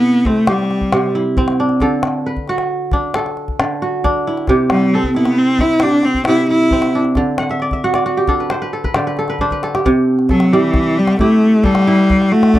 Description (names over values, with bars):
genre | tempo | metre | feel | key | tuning
west african traditional, West African string and xylophone music | 90 BPM (dotted quarters) | 12/8 | straight | C lydian | A4 = 437 Hz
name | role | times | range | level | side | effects
clear cello | melody | 0.0-12.6 s | E3 to E4 | -13 LUFS | left 1 dB | none
kora | arpeggios | 0.0-12.6 s | C3 to F#5 | -16 LUFS | right 1 dB | none
calabash | percussion | 0.2-12.6 s | none | -21 LUFS | left 1 dB | none
room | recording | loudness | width
light reverb | dry, close 1970s-style studio recording | -13 LUFS | side -14 dB against mid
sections
0.0-9.9 A section; 9.9-12.6 B section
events
kora fill 7.4-9.9; drum fill 9.4-9.9; cello solo 9.9-12.6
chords
0.0 C; 1.8 D; 4.5 C; 7.2 D; 9.9 C